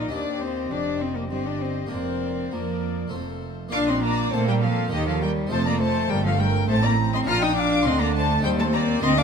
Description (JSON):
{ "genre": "classical, baroque-style concerto movement with solo episodes", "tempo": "101 BPM", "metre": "3/4", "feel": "straight", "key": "Bb major", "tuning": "A4 = 440 Hz", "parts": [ { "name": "rich cello", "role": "melody", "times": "0.0-9.2 s", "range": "Eb3 to F4", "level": "-26 LUFS", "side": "left 3 dB", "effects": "none" }, { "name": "warm chamber violin section", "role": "melody", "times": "0.0-9.2 s", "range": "C5 to F6", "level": "-30 LUFS", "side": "left 2 dB", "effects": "none" }, { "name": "warm chamber violin section", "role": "second line", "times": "0.0-9.2 s", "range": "G4 to Bb5", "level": "-30 LUFS", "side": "left 4 dB", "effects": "none" }, { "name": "dark chamber viola section", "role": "accompaniment", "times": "0.0-9.2 s", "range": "A3 to Bb4", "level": "-32 LUFS", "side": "right 3 dB", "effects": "none" }, { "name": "harpsichord", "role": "accompaniment", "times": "0.0-9.2 s", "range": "D2 to Bb4", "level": "-34 LUFS", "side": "equal", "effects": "none" }, { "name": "dark studio double bass section", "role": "bass", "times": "0.0-9.2 s", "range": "F1 to Bb2", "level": "-28 LUFS", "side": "right 4 dB", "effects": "none" }, { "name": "warm chamber cello section", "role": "bass", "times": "0.0-9.2 s", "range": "D2 to Bb3", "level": "-29 LUFS", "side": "right 5 dB", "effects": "none" } ], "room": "moderate scoring stage reverb, RT60 2.0 s", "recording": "none", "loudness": "-21 LUFS", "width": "side -6 dB against mid", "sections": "0.0-3.7 A section; 3.7-9.2 B section", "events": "none", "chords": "0.1 Cm; 1.9 Bb/F; 3.1 F; 3.7 Bb; 4.9 Eb; 5.5 F7; 7.3 Bb; 8.4 Cm/Eb", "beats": "| 0.11 0.71 1.31 | 1.92 2.52 3.13 | 3.73 4.33 4.92 | 5.51 6.09 6.68 | 7.27 7.85 8.44 | 9.03" }